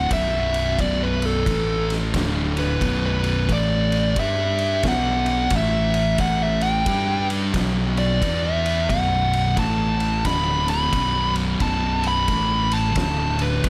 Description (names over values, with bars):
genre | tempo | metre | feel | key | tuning
stoner and doom metal | 89 BPM | 4/4 | swing 64% on 8ths | B minor | A4 = 441 Hz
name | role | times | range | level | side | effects
fuzz lead guitar | melody | 0.0-13.7 s | A4 to B5 | -26 LUFS | equal | distortion, tape echo
thick fuzz guitar | riff | 0.0-13.7 s | B1 to G4 | -29 LUFS | equal | distortion
thick fuzz guitar | riff | 0.0-13.7 s | B1 to G4 | -28 LUFS | equal | distortion
fingered electric bass | bass | 0.0-13.7 s | B0 to G2 | -28 LUFS | equal | overdrive
oversized low-tuned drum kit | drums | 0.1-13.7 s | kick drum, ride cymbal, snare drum | -30 LUFS | equal | none
room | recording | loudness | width
light reverb, small room ambience | none | -21 LUFS | mono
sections
0.0-13.7 A section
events
none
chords
0.1 B5; 1.5 A5; 2.1 D5; 2.8 B5; 3.5 A5; 4.2 G5; 4.8 B5; 5.5 A5; 6.9 G5; 7.5 B5; 8.2 E5; 8.9 B5; 9.6 A5; 10.3 D5; 10.9 B5; 12.3 A5; 13.0 D5